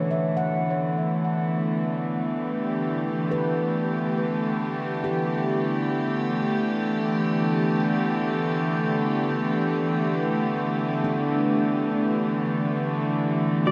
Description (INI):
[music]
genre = ambient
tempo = free time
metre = none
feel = none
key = unclear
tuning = A4 = 437 Hz
[part]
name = dark studio string section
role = sustained chords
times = 0.0-13.7 s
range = B2 to G4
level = -26 LUFS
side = equal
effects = none
[part]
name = handpan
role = arpeggios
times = 0.0-13.7 s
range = D4 to F#5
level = -34 LUFS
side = equal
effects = tape echo
[part]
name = analog drone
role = drone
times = 1.7-13.7 s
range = E3 to B3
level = -35 LUFS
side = equal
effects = none
[part]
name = pedal steel guitar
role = melody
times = 13.7 s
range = D5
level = -25 LUFS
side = equal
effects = none
[sound]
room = wet cathedral reverb, RT60 5.2 s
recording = none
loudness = -25 LUFS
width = mono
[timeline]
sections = 0.0-13.7 A section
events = none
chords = 0.0 Em7; 6.8 A7sus4